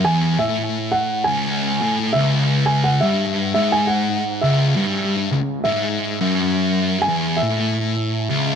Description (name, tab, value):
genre	metal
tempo	68 BPM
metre	4/4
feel	swing 62% on 8ths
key	C# minor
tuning	A4 = 440 Hz
part	felt-muted upright piano	melody	0.0-8.6 s	E5 to G#5	-22 LUFS	right 1 dB	analog delay
part	thick fuzz guitar	riff	0.0-8.6 s	C#2 to A2	-18 LUFS	left 1 dB	distortion
room	moderate large studio reverb, RT60 1.4 s, small room ambience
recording	none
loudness	-17 LUFS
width	side -7 dB against mid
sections	0.0-8.6 A section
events	none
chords	0.0 C#m